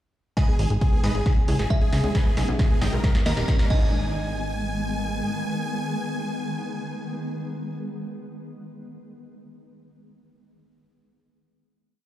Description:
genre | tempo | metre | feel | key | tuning
uplifting trance | 135 BPM | 4/4 | straight | G# harmonic minor | A4 = 440 Hz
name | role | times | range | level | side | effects
big supersaw lead | melody | 0.4-7.8 s | G#4 to G#5 | -33 LUFS | equal | sidechain pumping, tape echo
glassy synth bell | second line | 0.4-7.8 s | D#5 to G#5 | -36 LUFS | right 2 dB | chorus, tremolo, tape echo
warm baby grand piano | second line | 0.4-7.8 s | G#4 to G#5 | -41 LUFS | right 1 dB | none
shimmering ambient pad | sustained chords | 1.2-7.8 s | D#3 to B3 | -32 LUFS | left 1 dB | chorus, built-in reverb, sidechain pumping
analog pluck | arpeggios | 0.4-4.1 s | G3 to G#4 | -33 LUFS | left 2 dB | chorus, sidechain pumping, tape echo
electronic kick drum | drums | 0.4-3.8 s | none | -21 LUFS | equal | none
punchy analog drum machine | drums | 0.4-3.8 s | congas, crash cymbal, hi-hat, snare drum | -34 LUFS | equal | high-pass filter on snare, sidechain pumping on hats, high-pass filter on hats, sidechain pumping on perc, high-pass filter on perc, sidechain pumping on cymbals, high-pass filter on cymbals, high-pass filter on room
riser | sound effects | 2.2-3.9 s | none | -37 LUFS | right 1 dB | none
plucky analog bass | bass | 0.6-5.2 s | D#1 to G#2 | -25 LUFS | equal | sidechain pumping
room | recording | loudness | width
light reverb | played on a big sound system in a bare room, large studio reverb | -22 LUFS | side -13 dB against mid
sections
0.4-3.9 build; 3.9-7.5 final hit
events
build-up 0.4-3.9; drum fill 0.4-3.9; filter sweep on synth pluck 0.4-3.9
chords
0.4 G#m; 1.3 C#m; 2.1 G#m/B; 3.0 D#; 3.7 G#m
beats
| 0.37 0.81 1.26 1.70 | 2.15 2.59 3.04 3.48 | 3.93 4.37 4.81 5.26 | 5.70 6.15 6.59 7.04

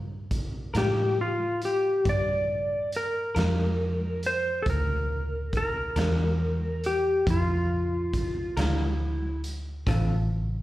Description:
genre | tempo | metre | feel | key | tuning
slow blues | 46 BPM (dotted quarters) | 12/8 | straight | unclear | A4 = 438 Hz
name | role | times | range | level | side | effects
vintage muted fingered electric bass | bass | 0.0-10.6 s | A1 to A2 | -28 LUFS | equal | none
raw garage drum kit | drums | 0.3-10.1 s | hi-hat, kick drum, snare drum | -33 LUFS | equal | none
electric guitar through a small old amp | accompaniment | 0.7-10.1 s | D3 to Bb4 | -33 LUFS | left 1 dB | tremolo, slapback echo
clean lap steel guitar | melody | 0.8-9.4 s | F4 to D5 | -27 LUFS | left 1 dB | slapback echo
room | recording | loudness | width
light reverb | live gig heard through the venue's PA, club reverb | -24 LUFS | side -16 dB against mid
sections
0.0-10.6 A section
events
none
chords
0.0 Gm7; 9.9 Dm7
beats
0.75 2.05 3.36 | 4.66 5.96 7.26 8.56 | 9.86

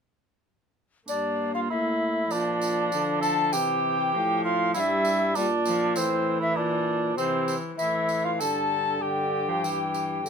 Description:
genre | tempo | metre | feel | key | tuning
classical, renaissance-style consort dance | 98 BPM | 4/4 | straight | G dorian | A4 = 440 Hz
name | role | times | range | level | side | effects
tenor recorder | melody | 1.1-10.3 s | C5 to A5 | -27 LUFS | left 4 dB | none
warm cor anglais | second line | 1.1-10.3 s | C4 to A4 | -29 LUFS | right 6 dB | none
rich viola | accompaniment | 1.1-10.3 s | D3 to Bb3 | -32 LUFS | left 2 dB | none
mellow trombone | bass | 1.1-10.3 s | G2 to D3 | -30 LUFS | right 2 dB | none
tambourine | percussion | 1.1-10.3 s | none | -37 LUFS | right 4 dB | none
room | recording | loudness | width
light reverb | minimal, uncompressed stereo recording | -23 LUFS | side -6 dB against mid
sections
1.1-10.3 A section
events
none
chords
1.1 Gm; 2.3 Bb; 3.5 C; 4.7 Gm; 6.0 A5; 7.2 C; 8.4 G5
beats
| 1.08 1.69 2.31 2.92 | 3.52 4.13 4.74 5.35 | 5.96 6.56 7.17 7.78 | 8.40 9.02 9.64 10.26

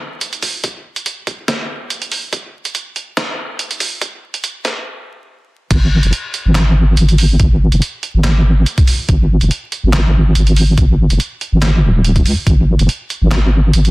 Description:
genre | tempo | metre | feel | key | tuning
deep dubstep | 142 BPM | 4/4 | swing 54% on 16ths, half-time | unclear | A4 = 437 Hz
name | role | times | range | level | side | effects
trip hop sampler-style drum kit | drums | 0.2-13.9 s | crash cymbal, handclaps, hi-hat, snare drum | -20 LUFS | right 1 dB | high-pass filter on hats, studio reverb, high-pass filter on snare, high-pass filter on cymbals
electronic kick drum | drums | 0.4-12.6 s | none | -14 LUFS | equal | high-pass filter on kick, studio reverb
deep soft wobble bass | bass | 5.7-13.9 s | D#1 to D#2 | -11 LUFS | equal | chorus
room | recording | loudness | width
digital ambience | dense, heavily limited modern master, vinyl crackle, high-pass filter, lossy compression artefacts | -12 LUFS | side -23 dB against mid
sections
0.0-5.7 A section; 5.7-13.9 B section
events
build-up 0.0-5.7; stop 4.9-5.7; drop 5.7-13.9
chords
none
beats
0.21 | 0.64 1.06 1.48 1.90 | 2.33 2.75 3.17 3.59 | 4.02 4.44 4.86 5.28 | 5.71 6.13 6.55 6.97 | 7.40 7.82 8.24 8.66 | 9.09 9.51 9.93 10.36 | 10.78 11.20 11.62 12.04 | 12.47 12.89 13.31 13.73

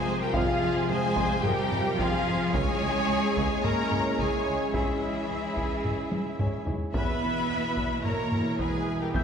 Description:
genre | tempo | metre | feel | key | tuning
cinematic, hybrid orchestral and electronic film score | 109 BPM | 4/4 | straight | unclear | A4 = 438 Hz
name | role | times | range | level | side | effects
warm symphonic violin section | melody | 0.0-9.2 s | Fb5 to B5 | -33 LUFS | left 3 dB | none
rich symphonic violin section | second line | 0.0-9.2 s | Ab4 to E5 | -34 LUFS | left 1 dB | none
rich symphonic viola section | accompaniment | 0.0-9.2 s | Fb4 to B4 | -33 LUFS | right 2 dB | none
chorused pulse-width pad | sustained chords | 0.0-9.2 s | B2 to Ab4 | -34 LUFS | left 1 dB | none
mellow French horn section | sustained chords | 0.0-9.2 s | C3 to E4 | -35 LUFS | left 1 dB | none
warm symphonic cello section | bass | 0.0-9.2 s | Fb3 to B3 | -33 LUFS | right 2 dB | none
felt-muted upright piano | texture | 0.0-9.2 s | F4 to G6 | -39 LUFS | left 2 dB | none
clear symphonic double bass section | bass | 0.1-9.2 s | Db2 to F2 | -35 LUFS | right 2 dB | none
solo taiko drums | drums | 0.3-9.2 s | none | -32 LUFS | equal | none
room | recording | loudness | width
wet scoring stage reverb, RT60 1.6 s | heard from further back in the room | -25 LUFS | side -7 dB against mid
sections
0.0-9.2 A section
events
drum fill 6.1-6.9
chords
0.0 Fm; 2.5 Dbm; 6.9 E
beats
| 0.34 0.89 1.44 1.99 | 2.54 3.09 3.64 4.19 | 4.74 5.29 5.84 6.39 | 6.94 7.49 8.04 8.60 | 9.14

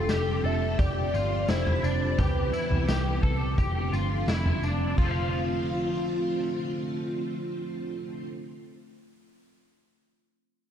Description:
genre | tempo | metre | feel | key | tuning
dream pop | 86 BPM | 4/4 | straight | F lydian | A4 = 440 Hz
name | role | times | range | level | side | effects
warbly nostalgic lead | melody | 0.0-8.3 s | F4 to E5 | -32 LUFS | equal | chorus, tape echo
string machine, full ensemble | sustained chords | 0.0-8.3 s | D3 to G4 | -32 LUFS | right 1 dB | ensemble chorus
electric guitar at the edge of break-up | arpeggios | 0.0-8.4 s | D4 to F5 | -34 LUFS | left 2 dB | ensemble chorus, tape echo
vintage muted picked electric bass | bass | 0.0-8.3 s | F1 to C2 | -29 LUFS | equal | none
vibraphone with medium hard mallets | texture | 0.0-8.3 s | G5 to D6 | -46 LUFS | left 3 dB | tape echo
raw garage drum kit | drums | 0.1-5.1 s | crash cymbal, kick drum, snare drum, tambourine, toms | -29 LUFS | equal | none
room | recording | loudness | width
light reverb, small room ambience | dark, warm production | -25 LUFS | side -9 dB against mid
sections
0.0-5.0 A section; 5.0-7.8 B section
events
none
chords
0.0 F69; 2.2 Cmaj7; 3.6 F6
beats
0.10 0.79 1.49 | 2.19 2.89 3.58 4.28 | 4.98 5.68 6.38 7.07

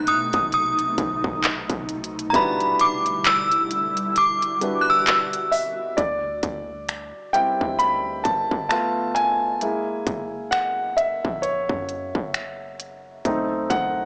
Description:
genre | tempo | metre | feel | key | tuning
contemporary R&B | 66 BPM | 4/4 | swing 58% on 16ths | E minor | A4 = 441 Hz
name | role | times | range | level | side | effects
synth chime | melody | 0.0-5.5 s | A#5 to F#6 | -22 LUFS | equal | ensemble chorus, cassette tape
warm baby grand piano | accompaniment | 0.0-14.1 s | G3 to B5 | -26 LUFS | equal | cassette tape
ethereal airy pad | sustained chords | 0.0-6.0 s | B2 to F#4 | -34 LUFS | equal | ensemble chorus, built-in reverb, phaser, cassette tape
soft 808-style bass | bass | 0.0-14.1 s | D1 to B2 | -43 LUFS | equal | none
industrial drum kit | drums | 0.1-13.9 s | finger snaps, handclaps, hi-hat, kick drum | -28 LUFS | equal | distortion, cassette tape
room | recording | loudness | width
light reverb, digital ambience | home recording on cassette, small speaker sound | -23 LUFS | mono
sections
0.0-6.0 A section; 6.0-14.1 B section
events
kick muted 4.2-6.0; grand piano solo 6.0-14.1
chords
0.0 B7b9; 2.3 Em7; 6.0 D7sus4; 8.7 G9; 9.6 F#7; 13.2 B7b9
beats
0.52 1.43 | 2.34 3.25 4.16 5.07 | 5.98 6.89 7.79 8.70 | 9.61 10.52 11.43 12.34 | 13.25

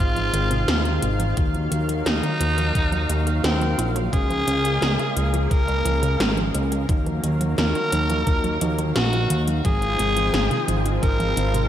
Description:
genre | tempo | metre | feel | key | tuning
synthwave | 87 BPM | 4/4 | straight | Eb dorian | A4 = 436 Hz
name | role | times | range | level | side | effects
raspy tenor saxophone | melody | 0.0-11.7 s | C4 to Bb4 | -26 LUFS | equal | digital delay, shimmer reverb
lush unison pad | sustained chords | 0.0-11.7 s | Db3 to F5 | -28 LUFS | left 1 dB | chorus, sidechain pumping, shimmer reverb
wide unison pluck | arpeggios | 0.0-11.7 s | C3 to F4 | -30 LUFS | right 2 dB | cassette tape, digital delay, shimmer reverb
fat analog bass | bass | 0.0-11.7 s | Ab1 to Eb2 | -23 LUFS | equal | sidechain pumping
80s electronic pad drums | drums | 0.2-11.7 s | hi-hat, snare drum | -27 LUFS | equal | overdrive, gated reverb
electronic kick drum | drums | 1.4-11.2 s | none | -22 LUFS | equal | none
room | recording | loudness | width
moderate lush hall reverb, RT60 2.5 s | bright 1980s-style digital production | -19 LUFS | side -11 dB against mid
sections
0.0-11.7 A section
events
none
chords
0.0 Ab6; 1.4 Ebmadd9; 4.1 Db6; 6.9 Ebmadd9; 9.6 Ab6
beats
0.68 | 1.37 2.06 2.75 3.44 | 4.13 4.82 5.51 6.20 | 6.89 7.58 8.27 8.96 | 9.65 10.34 11.03

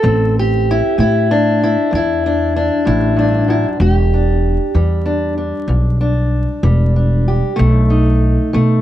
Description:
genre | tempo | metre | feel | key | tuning
blues | 64 BPM (dotted quarters) | 12/8 | straight | E minor | A4 = 439 Hz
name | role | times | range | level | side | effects
fingerpicked steel-string acoustic guitar | melody | 0.0-8.8 s | E2 to A4 | -16 LUFS | equal | none
upright bass | bass | 0.0-8.8 s | E1 to B2 | -14 LUFS | equal | none
room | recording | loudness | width
little or no reverb | dry, close 1970s-style studio recording, vinyl crackle | -12 LUFS | side -12 dB against mid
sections
0.0-8.8 A section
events
none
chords
0.0 Am7; 3.8 Em7; 7.6 B7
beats
| 0.03 0.97 1.92 2.86 | 3.81 4.75 5.69 6.64 | 7.59 8.54

